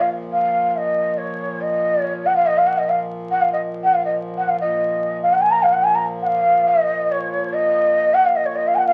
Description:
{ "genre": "indian classical, Hindustani", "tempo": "142 BPM", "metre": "7/4", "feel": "straight", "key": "Bb raga bhairavi", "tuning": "A4 = 439 Hz", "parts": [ { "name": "mellow bansuri", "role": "melody", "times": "0.0-8.9 s", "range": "Db5 to Bb5", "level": "-19 LUFS", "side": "equal", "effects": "none" }, { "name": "hand-pumped harmonium", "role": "drone", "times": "0.0-8.9 s", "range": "Bb2 to F3", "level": "-32 LUFS", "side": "equal", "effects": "none" } ], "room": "wet studio reverb, RT60 0.7 s", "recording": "very old 78 rpm record, vinyl crackle", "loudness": "-19 LUFS", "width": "mono", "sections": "0.0-4.6 A section; 4.6-8.9 B section", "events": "speeding up 0.0-8.9", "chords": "none", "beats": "0.31 0.74 1.17 | 1.60 2.03 2.46 2.89 3.31 3.74 4.16 | 4.59 5.01 5.43 5.85 6.27 6.69 7.11 | 7.52 7.94 8.35 8.77" }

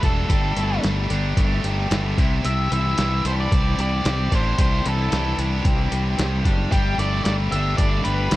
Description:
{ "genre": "indie rock", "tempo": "112 BPM", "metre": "4/4", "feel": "straight", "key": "unclear", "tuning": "A4 = 440 Hz", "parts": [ { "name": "octave-fuzz lead guitar", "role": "melody", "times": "0.0-8.4 s", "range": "G4 to E5", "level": "-27 LUFS", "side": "equal", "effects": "distortion" }, { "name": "overdriven electric guitar", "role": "riff", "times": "0.0-8.4 s", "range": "C3 to G4", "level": "-28 LUFS", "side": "left 6 dB", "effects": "none" }, { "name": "scooped high-gain guitar", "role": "riff", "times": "0.0-8.4 s", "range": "C3 to G4", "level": "-28 LUFS", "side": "right 5 dB", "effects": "distortion, analog chorus" }, { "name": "fuzz fingered electric bass", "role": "bass", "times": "0.0-8.4 s", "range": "E1 to C2", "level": "-23 LUFS", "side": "equal", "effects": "overdrive" }, { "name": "lo-fi sampler-style drum kit", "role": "drums", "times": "0.0-8.4 s", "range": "hi-hat, kick drum, snare drum", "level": "-22 LUFS", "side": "equal", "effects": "none" } ], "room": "light reverb", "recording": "dark, warm production", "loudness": "-18 LUFS", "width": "side -16 dB against mid", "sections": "0.0-8.4 A section", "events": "none", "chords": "0.0 Gsus2; 2.2 Cadd9; 6.7 Gsus2", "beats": "| 0.30 0.84 1.37 1.91 | 2.44 2.98 3.51 4.05 | 4.58 5.12 5.65 6.19 | 6.72 7.25 7.79 8.32" }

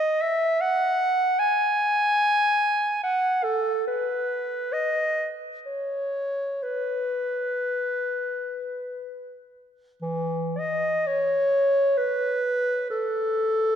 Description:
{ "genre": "classical, free, expressive piece for unaccompanied clarinet", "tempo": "39-77 BPM", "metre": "3/4", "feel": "rubato", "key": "unclear", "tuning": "A4 = 440 Hz", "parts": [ { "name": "dark clarinet", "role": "solo", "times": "0.0-13.8 s", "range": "E3 to G#5", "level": "-22 LUFS", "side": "equal", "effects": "none" } ], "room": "wet church reverb, RT60 2.8 s", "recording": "none", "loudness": "-22 LUFS", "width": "side -8 dB against mid", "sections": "0.0-10.0 A section; 10.0-13.8 B section", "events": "none", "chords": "none", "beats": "0.60 | 1.40 2.22 3.04 | 3.86 4.72 5.65 | 6.63 7.68 8.71 | 10.02 11.06 11.96 | 12.90" }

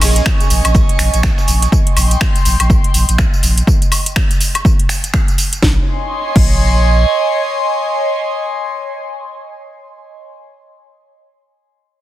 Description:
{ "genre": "deep house", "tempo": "123 BPM", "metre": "4/4", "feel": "swing 60% on 16ths", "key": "Bb dorian", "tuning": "A4 = 440 Hz", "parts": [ { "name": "airy breathy pad", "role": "sustained chords", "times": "0.0-10.3 s", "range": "Db4 to Db6", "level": "-19 LUFS", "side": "right 1 dB", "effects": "chorus, phaser, sidechain pumping" }, { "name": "warm sub bass", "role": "bass", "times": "0.0-7.0 s", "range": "Bb1", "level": "-14 LUFS", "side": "equal", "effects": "sidechain pumping" }, { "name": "dusty soul sampler-style drum kit", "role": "drums", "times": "0.0-1.7 s", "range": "hi-hat, shaker, snare drum", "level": "-28 LUFS", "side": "right 2 dB", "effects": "high-pass filter on hats, high-pass filter on snare, high-pass filter on perc, high-pass filter on room" }, { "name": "house drum kit", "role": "drums", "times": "0.0-6.5 s", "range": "crash cymbal, finger snaps, hi-hat, snare drum, tambourine, woodblock", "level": "-19 LUFS", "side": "equal", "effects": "overdrive, soft clipping on snare" }, { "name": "electronic kick drum", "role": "drums", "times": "0.3-6.5 s", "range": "none", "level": "-14 LUFS", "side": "equal", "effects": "overdrive" } ], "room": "light reverb, digital ambience", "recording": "dense, heavily limited modern master", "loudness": "-11 LUFS", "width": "side -14 dB against mid", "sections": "0.0-5.6 A section; 5.6-9.5 B section", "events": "drop 0.0-5.6", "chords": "0.0 Bbm11; 1.7 Cm/Bb; 5.6 Bbm11", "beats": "0.26 0.75 1.24 | 1.72 2.21 2.70 3.19 | 3.67 4.16 4.65 5.14 | 5.62 6.11 6.60 7.09 | 7.58 8.06 8.55 9.04" }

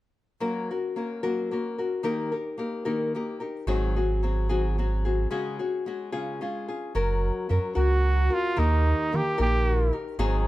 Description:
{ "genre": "mexican folk, mariachi", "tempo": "74 BPM (dotted quarters)", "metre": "6/8", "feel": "straight", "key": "F# major", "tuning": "A4 = 440 Hz", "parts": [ { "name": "nylon-string guitar", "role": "accompaniment", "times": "0.4-10.5 s", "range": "G#2 to A#4", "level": "-28 LUFS", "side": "left 3 dB", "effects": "none" }, { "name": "warm sub bass", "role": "bass", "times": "3.7-10.5 s", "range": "F#1 to D#3", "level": "-24 LUFS", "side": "right 1 dB", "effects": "none" }, { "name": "warm trumpet", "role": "melody", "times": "7.8-10.0 s", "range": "D#4 to G4", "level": "-27 LUFS", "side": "right 3 dB", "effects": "none" } ], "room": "little or no reverb", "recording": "close, detailed microphones", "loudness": "-24 LUFS", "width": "side -16 dB against mid", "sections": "0.4-6.9 A section; 6.9-10.5 B section", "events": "break 5.3-6.9", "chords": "0.4 F#; 2.0 D#; 3.7 G#7; 5.3 C#sus4; 6.1 C#; 6.9 F#; 8.6 D#", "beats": "| 0.41 1.23 | 2.04 2.85 | 3.67 4.48 | 5.30 6.12 | 6.94 7.76 | 8.58 9.39 | 10.19" }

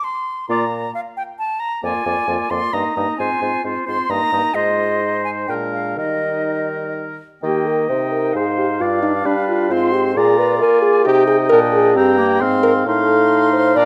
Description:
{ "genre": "quick classical-period movement for wind quintet", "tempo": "132 BPM", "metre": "3/4", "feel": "rubato", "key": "Eb major", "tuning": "A4 = 439 Hz", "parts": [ { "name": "silver concert flute", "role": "melody", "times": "0.0-13.9 s", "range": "Eb5 to C6", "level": "-25 LUFS", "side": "equal", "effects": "none" }, { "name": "clear oboe", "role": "second line", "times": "0.5-13.9 s", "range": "Bb4 to G5", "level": "-26 LUFS", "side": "equal", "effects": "none" }, { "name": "clear clarinet", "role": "accompaniment", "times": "0.5-13.9 s", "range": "Bb3 to F4", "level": "-27 LUFS", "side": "equal", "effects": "none" }, { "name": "warm French horn", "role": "accompaniment", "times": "0.5-13.9 s", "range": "G3 to D5", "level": "-21 LUFS", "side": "equal", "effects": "none" }, { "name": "mellow bassoon", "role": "bass", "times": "0.5-13.9 s", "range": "F2 to Bb3", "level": "-25 LUFS", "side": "equal", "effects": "none" } ], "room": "moderate recital hall reverb, RT60 1.5 s", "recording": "none", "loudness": "-18 LUFS", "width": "mono", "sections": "0.0-7.4 A section; 7.4-13.9 B section", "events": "none", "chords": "0.5 N.C.; 1.8 Bb7/F; 2.7 Eb/G; 3.2 Fm/Ab; 4.1 Eb/G; 4.6 Fm7/Ab; 5.5 Bb7; 6.0 Eb; 8.8 G7; 9.7 Ab; 10.2 Bb7; 11.1 Cm; 11.5 Gm/Bb; 12.4 Fm/Ab; 12.9 F7/A", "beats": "0.04 | 0.49 0.94 1.39 | 1.84 2.29 2.74 | 3.20 3.65 4.11 | 4.56 5.02 5.49 | 5.98 6.46 6.95 | 7.43 7.89 8.35 | 8.80 9.26 9.71 | 10.16 10.61 11.05 | 11.51 11.95 12.41 | 12.86 13.31 13.76" }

